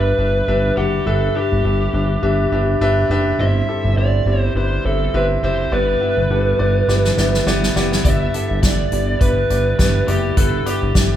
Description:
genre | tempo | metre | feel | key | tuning
piano-driven pop | 103 BPM | 4/4 | swing 56% on 16ths | unclear | A4 = 440 Hz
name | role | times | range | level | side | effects
lead guitar through a small cranked amp | melody | 0.0-11.2 s | G4 to E5 | -21 LUFS | left 1 dB | overdrive, tape echo
clear concert grand piano | accompaniment | 0.0-11.2 s | G2 to F#5 | -21 LUFS | equal | none
fat analog bass | bass | 0.0-11.2 s | F#1 to G1 | -19 LUFS | equal | none
unplugged drum kit | drums | 6.9-11.1 s | hi-hat, kick drum, snare drum | -18 LUFS | equal | none
room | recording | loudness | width
moderate large studio reverb, RT60 0.8 s | band playing live in one room | -15 LUFS | side -11 dB against mid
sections
0.0-11.2 A section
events
drum fill 6.9-8.0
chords
0.0 G6; 3.4 C/G; 5.7 Em7/G

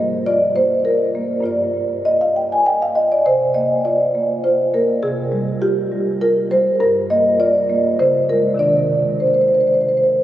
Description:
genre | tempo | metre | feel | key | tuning
classical, contemporary piece for solo marimba | 101 BPM | 3/4 | straight | C minor | A4 = 439 Hz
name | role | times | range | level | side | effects
marimba with soft mallets | solo | 0.0-10.2 s | G2 to Ab5 | -14 LUFS | equal | none
room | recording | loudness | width
wet cathedral reverb, RT60 6.1 s | recorded on a phone in the room, club reverb | -15 LUFS | side -13 dB against mid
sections
0.0-10.2 A section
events
none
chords
0.0 Absus2; 1.5 Gm7; 3.3 C9sus4; 5.0 Fmadd9/C; 6.8 Gm7; 8.0 Dbmaj7; 8.6 Cmadd9

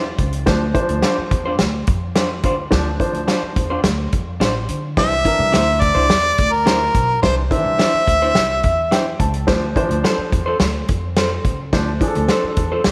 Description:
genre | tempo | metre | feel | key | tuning
uptempo 1960s-style soul | 107 BPM | 4/4 | straight | unclear | A4 = 439 Hz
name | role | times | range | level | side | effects
warm harmonica | melody | 0.0-0.2, 5.0-9.2 s | G4 to E5 | -19 LUFS | equal | none
electric guitar through a small old amp | stabs | 0.0-12.8 s | D4 to C5 | -26 LUFS | equal | none
upright bass | bass | 0.0-12.9 s | A1 to D3 | -25 LUFS | equal | none
natural country drum kit | drums | 0.2-12.9 s | hi-hat, kick drum, snare drum | -22 LUFS | equal | none
warm upright piano | accompaniment | 0.5-12.7 s | Eb3 to A5 | -25 LUFS | equal | none
room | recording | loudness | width
moderate echo chamber reverb, RT60 2.3 s | none | -18 LUFS | mono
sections
0.0-12.9 A section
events
upright piano fill 8.4-9.5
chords
0.5 Dm7; 5.0 Cadd9; 9.5 Dm7

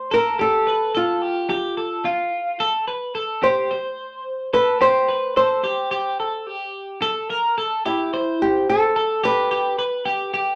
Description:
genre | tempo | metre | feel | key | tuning
indie pop | 109 BPM | 4/4 | straight | C major | A4 = 440 Hz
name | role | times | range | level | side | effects
nylon-string guitar | melody | 0.0-10.6 s | E4 to C5 | -22 LUFS | equal | none
twelve-string electric guitar | arpeggios | 0.0-10.6 s | F4 to C5 | -26 LUFS | equal | none
room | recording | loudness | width
moderate studio reverb, RT60 0.6 s | nothing above 10.7 kHz | -21 LUFS | mono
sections
0.0-10.6 A section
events
none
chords
0.4 F; 2.6 C5; 7.0 C7; 9.2 G

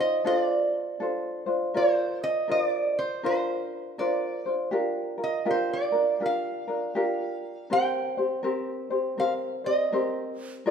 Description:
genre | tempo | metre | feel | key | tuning
Hawaiian | 81 BPM | 4/4 | swing 63% on 8ths | Bb major, Eb major from 4.7 s | A4 = 440 Hz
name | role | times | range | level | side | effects
lap resonator guitar | melody | 0.0-10.4 s | C5 to G5 | -27 LUFS | right 2 dB | none
tenor ukulele | accompaniment | 0.0-10.7 s | C4 to D5 | -27 LUFS | left 1 dB | none
room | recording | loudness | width
moderate recital hall reverb, RT60 1.6 s | minimal, uncompressed stereo recording | -25 LUFS | side -7 dB against mid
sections
0.0-4.7 A section; 4.7-10.7 B section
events
none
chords
0.3 F6; 1.7 Bbadd9; 4.7 Ebmaj9/D (rootless); 7.7 Cm7

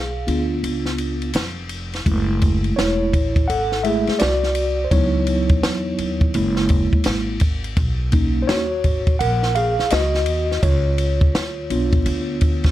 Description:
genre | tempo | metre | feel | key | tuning
hip hop, jazz-hop | 84 BPM | 4/4 | swing 64% on 16ths | unclear | A4 = 440 Hz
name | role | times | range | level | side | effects
mellow tine electric piano | accompaniment | 0.0-12.7 s | F#3 to F#5 | -21 LUFS | equal | medium stereo tremolo, plate reverb
upright bass | bass | 0.0-12.7 s | E1 to E2 | -23 LUFS | equal | none
compact cocktail drum kit | drums | 0.3-12.7 s | hi-hat, kick drum, ride cymbal, snare drum | -21 LUFS | equal | none
room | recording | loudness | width
light reverb | vinyl crackle | -17 LUFS | side -14 dB against mid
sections
0.0-2.1 A section; 2.1-12.7 B section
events
break 0.0-2.1; tine electric piano solo 0.0-2.1, 2.1-12.7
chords
0.0 C#7b9; 2.1 F#m7; 4.9 C#m11; 6.3 F#7; 7.8 Bmaj9; 10.6 C#7b9

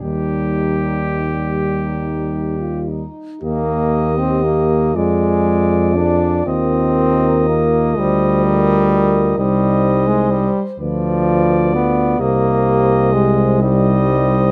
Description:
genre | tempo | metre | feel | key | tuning
classical, hymn-like piece for brass band | 34-44 BPM (dotted quarters) | 6/8 | rubato | Eb major | A4 = 440 Hz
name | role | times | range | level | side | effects
mellow cornet | melody | 0.0-14.5 s | G4 to Eb5 | -27 LUFS | equal | none
dark French horn section | second line | 0.0-14.5 s | Eb4 to C5 | -26 LUFS | equal | none
mellow euphonium | accompaniment | 0.0-14.5 s | G3 to G4 | -25 LUFS | equal | none
warm trombone | accompaniment | 0.0-14.5 s | F3 to D4 | -20 LUFS | equal | none
mellow tuba | bass | 0.0-14.5 s | C2 to F2 | -21 LUFS | equal | none
room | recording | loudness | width
moderate stone room reverb, RT60 1.0 s | close, detailed microphones | -16 LUFS | mono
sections
0.0-3.4 A section; 3.4-14.5 A section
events
none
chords
0.0 Eb; 4.9 Ddim/F; 6.5 Eb; 9.4 Cm; 10.8 Bdim/D; 12.2 Cm

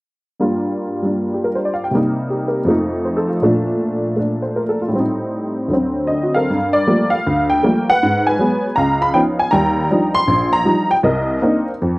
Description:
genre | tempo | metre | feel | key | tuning
solo jazz | 158 BPM | 4/4 | swing 67% on 8ths, rubato | G minor | A4 = 440 Hz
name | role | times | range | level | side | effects
honky-tonk upright piano | solo | 0.4-12.0 s | Bb1 to C6 | -15 LUFS | equal | none
room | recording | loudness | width
light reverb | dry, close 1970s-style studio recording | -15 LUFS | side -22 dB against mid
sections
0.4-6.5 A section; 6.5-12.0 B section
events
none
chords
0.4 Gm7; 1.9 Cm7; 2.7 F7; 3.4 Bbmaj7; 4.9 Am7b5; 5.7 D7; 6.5 Gm9; 8.0 Abm7; 8.8 C#9; 9.5 Ebmaj9; 11.0 Cm9

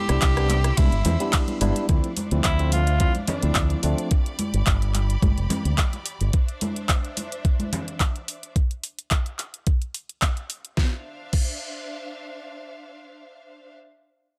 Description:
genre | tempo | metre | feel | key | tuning
nu-disco, nu disco | 108 BPM | 4/4 | swing 54% on 16ths | D dorian | A4 = 441 Hz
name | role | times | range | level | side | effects
clear tenor saxophone | melody | 0.0-3.8 s | D4 to G4 | -32 LUFS | equal | tape echo
bright studio string section | sustained chords | 0.0-13.8 s | D4 to E6 | -41 LUFS | equal | sidechain pumping
barky tine electric piano | accompaniment | 0.1-4.1 s | F3 to G4 | -31 LUFS | equal | sidechain pumping, low-pass filter, analog delay
soft round pluck | arpeggios | 0.1-1.8 s | B3 to C5 | -40 LUFS | equal | none
fingered electric bass with an envelope filter | bass | 0.1-6.3 s | F1 to E2 | -24 LUFS | equal | none
pop drum kit | drums | 0.1-11.5 s | crash cymbal, handclaps, hi-hat, ride cymbal, rim click, snare drum | -30 LUFS | equal | overdrive
electronic kick drum | drums | 0.2-11.5 s | none | -24 LUFS | equal | overdrive
congas | percussion | 0.5-7.8 s | none | -32 LUFS | equal | none
room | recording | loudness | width
little or no reverb | dry, gritty hardware recording | -23 LUFS | mono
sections
0.0-1.9 A section; 1.9-10.8 B section; 10.8-13.0 C section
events
drop 0.0-1.9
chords
0.0 Cmaj7; 1.9 Dm9; 4.1 G; 6.3 Dsus2; 8.6 N.C.; 10.8 Dm9

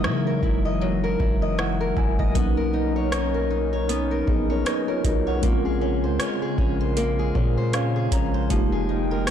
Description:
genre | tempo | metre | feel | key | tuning
contemporary R&B | 78 BPM | 4/4 | swing 58% on 16ths | unclear | A4 = 440 Hz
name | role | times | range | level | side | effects
mellow tine electric piano | accompaniment | 0.0-9.3 s | F#3 to Bb5 | -27 LUFS | right 1 dB | medium stereo tremolo
hollow soft pad | sustained chords | 0.0-9.3 s | Db3 to G5 | -30 LUFS | left 3 dB | chorus, sidechain pumping
fingerpicked old ladder-braced acoustic guitar | arpeggios | 0.0-9.3 s | F3 to Eb5 | -28 LUFS | left 3 dB | digital delay
long sustained 808-style bass | bass | 0.0-9.3 s | F1 to Db3 | -26 LUFS | right 1 dB | none
booming analog drum machine | drums | 0.0-9.3 s | hi-hat, kick drum, rim click | -24 LUFS | equal | soft clipping on snare
room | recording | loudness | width
light reverb | blown-out, overdriven recording, overdrive | -20 LUFS | side -9 dB against mid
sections
0.0-9.3 A section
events
tine electric piano fill 1.2-2.4, 7.4-8.5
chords
0.0 Gb13; 2.4 Bmaj9; 5.4 Bbm9; 8.5 Fm11

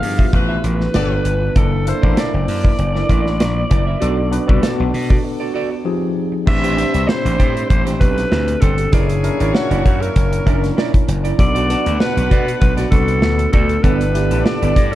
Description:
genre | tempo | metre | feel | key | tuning
polished 1980s jazz-funk pop | 98 BPM | 4/4 | swing 54% on 16ths | unclear | A4 = 444 Hz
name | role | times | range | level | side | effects
growling alto saxophone | melody | 0.0-14.9 s | F#4 to F5 | -22 LUFS | equal | none
tine electric piano | accompaniment | 0.0-14.9 s | F3 to C5 | -22 LUFS | equal | medium stereo tremolo, analog chorus
semi-hollow electric guitar | riff | 0.0-14.9 s | B3 to E5 | -27 LUFS | right 6 dB | wide subtle chorus
gritty slap bass | bass | 0.0-14.9 s | F#1 to B2 | -19 LUFS | equal | overdrive
modern studio drum kit | drums | 0.0-14.9 s | crash cymbal, hi-hat, kick drum, snare drum | -17 LUFS | equal | none
warm horn section | second line | 0.3-1.2, 6.5-14.9 s | F3 to F#5 | -28 LUFS | left 3 dB | none
room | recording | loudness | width
light reverb | dark, warm production | -14 LUFS | side -14 dB against mid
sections
0.0-6.5 A section; 6.5-14.9 B section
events
break 5.3-6.5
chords
0.0 G13; 0.9 G9; 1.6 F#7alt; 4.0 Bm7; 5.9 Fm9; 6.5 Am11; 8.9 F#7b13; 11.4 Bm7; 13.8 G69

